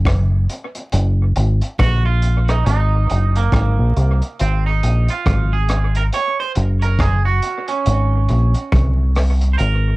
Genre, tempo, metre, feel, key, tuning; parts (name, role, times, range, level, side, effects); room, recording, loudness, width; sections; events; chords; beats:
roots reggae; 69 BPM; 4/4; swing 59% on 16ths; A4 = 440 Hz
deep dub fingered electric bass; bass; 0.0-10.0 s; Gb1 to C2; -15 LUFS; equal
crunchy breakbeat drum kit; drums; 0.1-9.8 s; hi-hat, kick drum, rim click; -22 LUFS; equal; cassette tape, analog delay
twangy electric guitar; accompaniment; 1.8-10.0 s; Bb3 to Db5; -22 LUFS; right 6 dB; cassette tape, tape echo
little or no reverb; home recording on cassette, vinyl crackle; -14 LUFS; side -21 dB against mid
0.0-10.0 A section
clean electric guitar solo 0.0-10.0
0.0 Gb
0.06 0.93 1.79 | 2.66 3.53 4.39 5.26 | 6.13 6.99 7.86 8.73 | 9.59